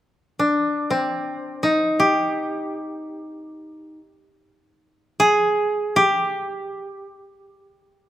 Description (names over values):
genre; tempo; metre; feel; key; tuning
japanese traditional; free time; none; none; G miyako bushi; A4 = 442 Hz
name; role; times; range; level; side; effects
koto; melody; 0.4-8.1 s; C4 to Ab4; -20 LUFS; equal; none
room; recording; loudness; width
moderate recital hall reverb, RT60 1.6 s; none; -19 LUFS; side -12 dB against mid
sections
0.0-8.1 A section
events
none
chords
none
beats
free time